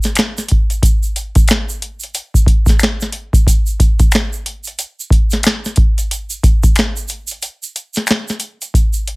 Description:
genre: R&B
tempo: 91 BPM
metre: 4/4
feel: swing 60% on 16ths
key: none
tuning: none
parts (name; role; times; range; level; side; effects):
- booming analog drum machine; drums; 0.0-9.2 s; finger snaps, hi-hat, kick drum, snare drum; -12 LUFS; equal; none
- egg shaker and finger snaps; percussion; 0.0-9.1 s; none; -22 LUFS; right 1 dB; none
room: little or no reverb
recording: heavily compressed radio sound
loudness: -13 LUFS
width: side -27 dB against mid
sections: 0.0-8.7 A section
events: break 7.4-8.7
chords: none

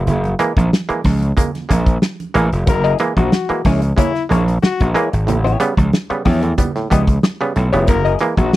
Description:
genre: funk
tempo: 92 BPM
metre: 4/4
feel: straight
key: F# mixolydian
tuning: A4 = 441 Hz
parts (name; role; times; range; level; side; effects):
- gritty slap bass; bass; 0.0-8.5 s; E#1 to E2; -16 LUFS; equal; overdrive
- warm soul drum kit; drums; 0.1-8.6 s; hi-hat, kick drum, snare drum; -16 LUFS; equal; none
- congas; percussion; 0.1-8.5 s; none; -23 LUFS; right 4 dB; none
- muted clav; stabs; 0.4-8.4 s; A2 to B3; -19 LUFS; right 3 dB; none
- brilliant trombone; second line; 2.7-8.6 s; E4 to A#4; -20 LUFS; left 6 dB; none
- electric guitar at the edge of break-up; accompaniment; 2.7-8.4 s; A#3 to D#5; -20 LUFS; left 5 dB; wah
room: little or no reverb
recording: dry, close 1970s-style studio recording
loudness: -14 LUFS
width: side -16 dB against mid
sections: 0.0-8.6 A section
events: break 0.0-2.7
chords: 0.0 F#9 (rootless); 5.3 A9; 7.9 F#9

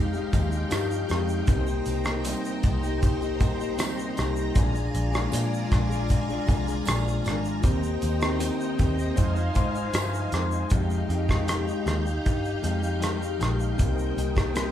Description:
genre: indie pop, bedroom pop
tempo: 78 BPM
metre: 4/4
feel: straight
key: F dorian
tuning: A4 = 440 Hz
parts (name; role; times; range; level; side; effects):
- electric guitar through a small old amp; accompaniment; 0.0-14.7 s; Bb2 to C5; -29 LUFS; left 3 dB; warbly pitch drift
- string machine, violins; sustained chords; 0.0-14.7 s; Eb4 to Bb5; -34 LUFS; right 1 dB; ensemble chorus
- vintage muted picked electric bass; bass; 0.0-14.7 s; Ab1 to Bb2; -28 LUFS; equal; none
- cloth-damped thuddy drum kit; drums; 0.1-14.7 s; hi-hat, kick drum, rim click, shaker; -27 LUFS; equal; none
- tambourine; percussion; 0.3-10.5 s; none; -46 LUFS; right 5 dB; none
room: moderate large studio reverb, RT60 1.0 s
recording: band playing live in one room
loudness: -23 LUFS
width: side -11 dB against mid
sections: 0.0-10.7 A section; 10.7-14.7 B section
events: none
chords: 0.0 Fm9; 1.5 Cm7; 4.6 Bb7; 7.6 Eb6; 9.2 Fm7; 10.7 Fm9; 13.8 Cm7

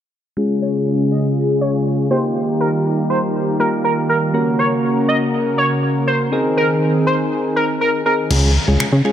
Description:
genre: dance-pop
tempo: 121 BPM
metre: 4/4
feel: straight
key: unclear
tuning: A4 = 440 Hz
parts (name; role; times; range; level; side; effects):
- soft electric-piano-like synth keys; accompaniment; 0.4-9.1 s; Ab3 to Bb4; -20 LUFS; left 1 dB; chorus, tremolo, low-pass filter
- lush unison pad; sustained chords; 0.4-8.3 s; Db3 to Bb4; -20 LUFS; right 1 dB; chorus, low-pass filter
- octave-doubled lead; melody; 0.6-8.1 s; Bb4 to Eb5; -20 LUFS; right 1 dB; chorus, low-pass filter, tape echo
- plucky analog bass; bass; 8.3-9.0 s; Db2 to Db3; -14 LUFS; equal; none
- detuned 8-bit digital drum machine; drums; 8.3-8.9 s; crash cymbal, finger snaps; -22 LUFS; left 3 dB; tape echo
- downlifter; sound effects; 8.3-9.1 s; none; -26 LUFS; left 2 dB; none
room: moderate echo chamber reverb, RT60 2.1 s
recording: echo-heavy mix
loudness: -15 LUFS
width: side -10 dB against mid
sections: 0.4-8.3 A section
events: filter sweep 0.4-8.3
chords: 0.4 Db; 2.1 Ebadd9; 4.3 Gb; 6.3 Abadd9; 8.3 Db

